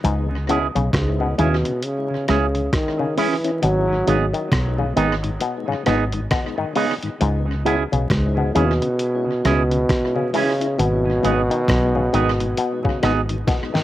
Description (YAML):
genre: roots reggae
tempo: 67 BPM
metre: 4/4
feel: swing 60% on 16ths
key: C# minor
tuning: A4 = 440 Hz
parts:
  - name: auto-wah clav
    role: arpeggios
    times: 0.0-13.8 s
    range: G#2 to E3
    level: -26 LUFS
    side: left 6 dB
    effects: cassette tape
  - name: deep dub fingered electric bass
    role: bass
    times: 0.0-13.4 s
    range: G#1 to D#2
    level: -21 LUFS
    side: equal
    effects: none
  - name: dusty soul sampler-style drum kit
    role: drums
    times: 0.0-13.8 s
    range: hi-hat, kick drum, rim click, snare drum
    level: -24 LUFS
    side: equal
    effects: tape echo
  - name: mellow tonewheel organ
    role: accompaniment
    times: 0.3-13.8 s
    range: G#2 to E4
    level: -28 LUFS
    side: left 5 dB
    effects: slow rotary speaker, cassette tape, tape echo
  - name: electric guitar with an envelope filter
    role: accompaniment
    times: 0.5-13.3 s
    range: B3 to G#4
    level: -25 LUFS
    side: right 7 dB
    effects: cassette tape, dub echo
  - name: breathy trombone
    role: melody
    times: 1.0-13.5 s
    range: G#2 to F#3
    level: -23 LUFS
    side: equal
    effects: cassette tape, dub echo
room: light reverb, digital ambience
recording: home recording on cassette, vinyl crackle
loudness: -18 LUFS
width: side -14 dB against mid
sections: 0.0-13.8 A section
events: drum fill 13.5-13.8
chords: 0.0 C#m; 3.6 G#m; 7.2 C#m; 10.8 G#m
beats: | 0.04 0.94 1.83 2.73 | 3.62 4.52 5.42 6.31 | 7.21 8.10 9.00 9.89 | 10.79 11.69 12.58 13.48